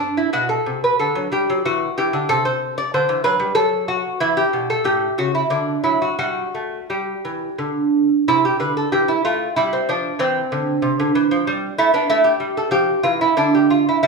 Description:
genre	classical, baroque-style dance for lute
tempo	85-98 BPM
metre	3/4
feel	rubato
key	G major, C major from 8.3 s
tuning	A4 = 438 Hz
part	lute	solo	0.0-14.1 s	G2 to D5	-17 LUFS	right 1 dB	none
room	moderate recital hall reverb, RT60 1.5 s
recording	studio ambience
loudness	-17 LUFS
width	side -3 dB against mid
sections	0.0-8.3 A section; 8.3-14.1 A section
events	none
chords	0.3 Bm; 1.6 Em; 2.3 Cmaj7sus2; 3.6 N.C.; 4.2 Em; 4.8 A7; 5.5 D; 6.2 G5; 8.3 C; 9.6 G5; 10.2 C; 12.1 A5; 13.4 N.C.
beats	| 0.32 0.97 1.63 | 2.29 2.93 3.56 | 4.20 4.83 5.49 | 6.17 6.88 7.57 | 8.26 8.92 9.56 | 10.19 10.83 11.46 | 12.07 12.71 13.35 | 14.02

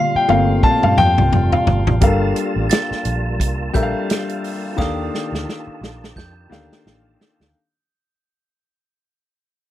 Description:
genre	lush 1970s-style soul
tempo	87 BPM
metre	4/4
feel	swing 58% on 16ths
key	G minor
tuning	A4 = 440 Hz
part	warm grand piano	accompaniment	0.0-7.6 s	Eb3 to A5	-19 LUFS	left 3 dB	none
part	percussive tonewheel organ	sustained chords	0.0-7.5 s	Bb2 to A5	-27 LUFS	right 3 dB	slow rotary speaker, overdrive, chorus vibrato
part	glockenspiel with brass mallets	texture	0.0-7.8 s	Eb6 to C7	-31 LUFS	right 6 dB	none
part	vintage muted fingered electric bass	bass	0.2-7.5 s	F1 to G2	-20 LUFS	right 1 dB	none
part	warm soul drum kit	drums	0.3-7.5 s	hi-hat, kick drum, snare drum, toms	-19 LUFS	equal	none
room	little or no reverb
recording	none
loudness	-15 LUFS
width	side -13 dB against mid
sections	0.0-2.0 A section; 2.0-7.5 B section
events	drum fill 0.0-2.0, 4.8-7.5; grand piano solo 0.0-2.0; fade-out 2.0-7.5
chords	0.0 Gm11; 2.0 Gm9; 4.8 Ebmaj9#11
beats	0.64 1.33 | 2.02 2.71 3.40 4.09 | 4.78 5.47 6.16 6.85

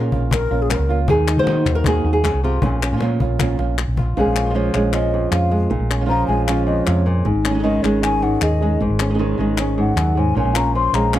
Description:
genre	flamenco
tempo	155 BPM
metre	4/4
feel	straight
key	Bb minor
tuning	A4 = 442 Hz
part	flamenco guitar	melody	0.0-11.2 s	F2 to C5	-21 LUFS	left 1 dB	none
part	flamenco guitar	stabs	0.0-11.2 s	Db3 to Ab4	-24 LUFS	right 7 dB	none
part	hollow-body short-scale fingered electric bass	bass	0.0-11.2 s	Ab1 to Eb3	-20 LUFS	equal	none
part	cajon	percussion	0.1-4.1 s	none	-24 LUFS	left 2 dB	none
part	mellow hollow wooden flute	second line	0.3-1.0, 4.2-11.2 s	Ab4 to C6	-23 LUFS	left 4 dB	none
part	palmas hand claps	percussion	0.3-11.2 s	none	-25 LUFS	left 8 dB	none
room	studio reverb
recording	dry, close 1970s-style studio recording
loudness	-16 LUFS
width	side -13 dB against mid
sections	0.0-4.2 A section; 4.2-11.2 B section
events	drum fill 3.6-4.2; flute solo 4.2-11.2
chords	0.0 Bbm; 1.1 Ebm; 2.6 Bbm; 4.2 Bbm7; 7.3 Absus4; 10.4 Bbm7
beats	0.32 0.70 | 1.09 1.47 1.86 2.24 | 2.62 3.01 3.39 3.78 | 4.16 4.55 4.94 5.32 | 5.71 6.09 6.48 6.87 | 7.26 7.64 8.03 8.42 | 8.81 9.20 9.58 9.97 | 10.36 10.75 11.13

